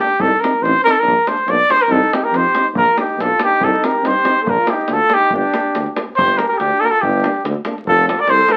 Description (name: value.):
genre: balkan folk, Balkan brass band.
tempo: 141 BPM.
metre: 2/4.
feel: straight.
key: G minor.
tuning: A4 = 440 Hz.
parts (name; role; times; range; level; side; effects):
warm trumpet; melody; 0.0-8.6 s; G4 to D5; -16 LUFS; equal; none.
clear French horn; accompaniment; 0.0-8.6 s; C4 to Eb4; -31 LUFS; equal; none.
mellow euphonium; accompaniment; 0.0-8.6 s; A3 to C4; -29 LUFS; equal; none.
mellow tuba; bass; 0.2-8.4 s; F1 to G2; -24 LUFS; equal; none.
davul; percussion; 0.2-8.6 s; none; -27 LUFS; equal; none.
warm flugelhorn; second line; 1.9-8.6 s; D4 to Bb4; -27 LUFS; equal; none.
room: moderate studio ambience, RT60 0.5 s.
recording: very old 78 rpm record, vinyl crackle.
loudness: -15 LUFS.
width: mono.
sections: 0.0-6.2 A section; 6.2-8.6 B section.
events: none.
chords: 0.2 Cm; 1.1 Bb; 1.9 Cm; 2.8 Bb; 3.6 Cm; 4.5 Bb; 5.3 Gm; 7.9 F.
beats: | 0.20 0.63 | 1.05 1.48 | 1.91 2.33 | 2.75 3.18 | 3.60 4.03 | 4.45 4.88 | 5.30 5.73 | 6.15 6.58 | 7.00 7.43 | 7.86 8.28.